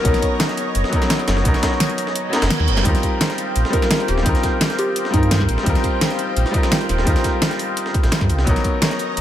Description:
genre	liquid drum and bass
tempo	171 BPM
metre	4/4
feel	straight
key	Eb major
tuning	A4 = 439 Hz
part	soft struck synth lead	melody	0.0-0.5, 3.7-5.5 s	Eb4 to A#4	-28 LUFS	left 1 dB	chorus, tape echo
part	bright concert grand piano	accompaniment	0.0-9.2 s	F#3 to A#4	-22 LUFS	left 1 dB	tape echo
part	lush unison pad	sustained chords	0.0-9.2 s	C5 to A#5	-27 LUFS	equal	chorus, phaser
part	sub bass with octave	bass	0.1-9.2 s	Eb1 to G2	-19 LUFS	equal	none
part	breakbeat sampler-style drum kit	drums	0.1-9.2 s	hi-hat, snare drum	-26 LUFS	equal	high-pass filter on snare, high-pass filter on hats
part	electronic kick drum	drums	0.1-8.7 s	none	-20 LUFS	equal	none
part	pop drum kit	drums	0.1-9.2 s	hi-hat, snare drum	-23 LUFS	equal	none
part	reverse cymbal	sound effects	2.3-2.9 s	none	-29 LUFS	right 7 dB	none
room	light reverb, digital ambience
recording	none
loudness	-16 LUFS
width	side -11 dB against mid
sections	0.0-9.2 A section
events	kick drops out 2.2-2.9; reverse cymbal 2.3-2.9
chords	0.0 Bmaj9; 2.9 Eb69; 8.5 Bmaj9

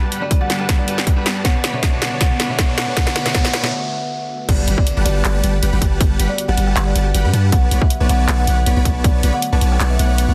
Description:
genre	future bass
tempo	158 BPM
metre	4/4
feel	swing 53% on 16ths, half-time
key	G lydian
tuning	A4 = 436 Hz
part	kalimba	melody	0.0-10.2 s	B4 to A5	-28 LUFS	equal	sidechain pumping, delay
part	clean electric guitar	accompaniment	0.0-3.7 s	B2 to C#5	-30 LUFS	equal	sidechain pumping, delay
part	ethereal airy pad	sustained chords	0.1-10.3 s	D3 to B4	-34 LUFS	equal	none
part	dense compressed supersaw	riff	0.0-10.3 s	G3 to B5	-26 LUFS	equal	sidechain pumping, low-pass filter
part	riser and impact	sound effects	0.8-6.0 s	none	-32 LUFS	equal	none
part	big-room dance drum kit	drums	0.1-10.3 s	crash cymbal, handclaps, hi-hat, ride cymbal, snare drum	-24 LUFS	equal	high-pass filter on snare, high-pass filter on hats, high-pass filter on cymbals
part	electronic kick drum	drums	0.3-9.1 s	none	-19 LUFS	equal	none
part	long sustained 808-style bass	bass	4.5-10.3 s	G1 to G2	-18 LUFS	equal	sidechain pumping
room	light reverb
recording	dense, heavily limited modern master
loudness	-17 LUFS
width	mono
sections	0.0-4.5 A section; 4.5-10.3 B section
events	build-up 0.0-4.5; drum fill 0.0-3.7; break 3.7-4.5; drop 4.5-10.3; impact 4.5-6.0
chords	0.0 Gmaj7; 1.4 Bm7; 4.5 Gmaj7; 7.5 Bm7

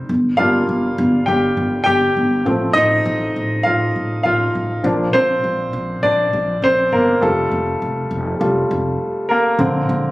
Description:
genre	piano-driven pop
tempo	101 BPM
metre	4/4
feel	straight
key	Bb major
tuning	A4 = 440 Hz
part	clear baby grand piano	accompaniment	0.0-10.1 s	D3 to G5	-16 LUFS	equal	none
part	upright bass	bass	0.0-10.1 s	F1 to Bb1	-21 LUFS	equal	none
room	light reverb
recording	recorded on a phone in the room, studio ambience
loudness	-15 LUFS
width	side -18 dB against mid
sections	0.0-9.6 A section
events	grand piano solo 0.0-9.6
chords	0.1 Gm; 2.5 F/A; 4.8 Bb; 7.2 Fadd9; 9.6 Bbadd9

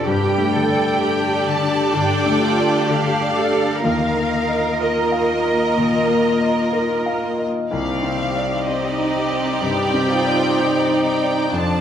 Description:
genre	cinematic, emotional film score for orchestra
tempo	63 BPM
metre	4/4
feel	rubato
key	C dorian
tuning	A4 = 441 Hz
part	rich studio violin section	melody	0.0-11.8 s	Eb5 to A5	-25 LUFS	equal	none
part	bright studio violin section	second line	0.0-11.8 s	F4 to Eb5	-25 LUFS	equal	none
part	bright concert grand piano	accompaniment	0.0-11.8 s	C2 to F5	-22 LUFS	left 2 dB	none
part	rich studio viola section	accompaniment	0.0-11.8 s	Bb3 to G4	-23 LUFS	right 2 dB	none
part	concert harp	arpeggios	0.0-11.8 s	F2 to Eb4	-28 LUFS	left 6 dB	none
part	rich studio cello section	bass	0.0-11.8 s	D4 to Bb4	-23 LUFS	right 2 dB	none
room	wet scoring stage reverb, RT60 1.7 s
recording	none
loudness	-16 LUFS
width	side -9 dB against mid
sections	0.0-11.8 A section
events	none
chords	0.1 Gsus2; 3.9 Ebsus2; 7.7 Cmadd9

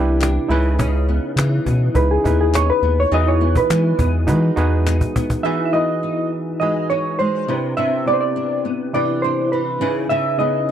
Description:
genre	indie pop, bedroom pop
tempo	103 BPM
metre	4/4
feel	straight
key	unclear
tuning	A4 = 440 Hz
part	soft electric-piano-like synth keys	melody	0.0-10.7 s	G4 to E5	-20 LUFS	right 1 dB	lush chorus, tape echo
part	barky reed electric piano	accompaniment	0.0-10.7 s	C3 to B4	-24 LUFS	right 4 dB	overdrive, cassette tape
part	flamenco guitar	accompaniment	0.0-10.7 s	C3 to D#4	-24 LUFS	left 3 dB	ensemble chorus, vibrato effect
part	round analog bass	bass	0.0-5.0 s	C2 to E3	-17 LUFS	equal	none
part	cajon	drums	0.2-5.4 s	none	-22 LUFS	equal	none
part	group handclap	percussion	0.2-5.0 s	none	-31 LUFS	left 7 dB	none
room	light reverb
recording	dry, close 1970s-style studio recording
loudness	-16 LUFS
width	side -10 dB against mid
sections	0.0-5.4 A section; 5.4-10.7 B section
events	synth keys solo 0.0-5.4; drum fill 4.3-5.4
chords	0.5 C#m9; 3.1 Emaj7; 7.5 Cmaj9; 9.8 C#m9

